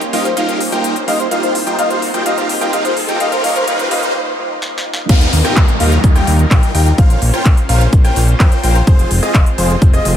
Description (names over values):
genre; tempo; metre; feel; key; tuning
EDM, festival progressive house; 127 BPM; 4/4; straight; unclear; A4 = 440 Hz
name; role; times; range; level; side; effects
supersaw pad; sustained chords; 0.0-10.2 s; G3 to Db5; -25 LUFS; equal; sidechain pumping
big-room dance drum kit; drums; 0.0-10.1 s; crash cymbal, handclaps, hi-hat, rim click, snare drum; -22 LUFS; left 1 dB; overdrive, high-pass filter on hats, high-pass filter on snare, high-pass filter on cymbals
riser and downlifter; sound effects; 0.1-8.9 s; none; -23 LUFS; equal; none
breathy flute-like synth lead; melody; 0.1-4.1 s; C5 to Eb5; -21 LUFS; left 1 dB; lush chorus, dub echo
mellow electric guitar; accompaniment; 0.1-5.1 s; G3 to F4; -26 LUFS; right 3 dB; vintage 12-bit sampler grit, sidechain pumping, dub echo
clear baby grand piano; arpeggios; 0.1-10.1 s; C5 to G5; -23 LUFS; left 2 dB; sidechain pumping, dub echo
big supersaw lead; riff; 0.1-10.1 s; Db4 to G5; -20 LUFS; right 1 dB; phaser, sidechain pumping, dub echo
fat analog bass; bass; 5.1-10.2 s; F1 to F2; -14 LUFS; equal; sidechain pumping
electronic kick drum; drums; 5.1-9.9 s; none; -10 LUFS; equal; overdrive
room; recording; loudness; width
light reverb; high-pass filter; -11 LUFS; side -10 dB against mid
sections
0.0-5.1 A section; 5.1-10.2 B section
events
build-up 0.0-5.1; filter sweep on supersaw synth 0.0-5.1; riser 0.1-4.1; break 4.1-5.1; drum fill 4.6-5.1; drop 5.1-10.2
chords
0.0 Bbmadd9; 1.3 F5; 3.2 Db; 5.1 Ebadd9; 7.0 Bbmadd9; 8.9 Fm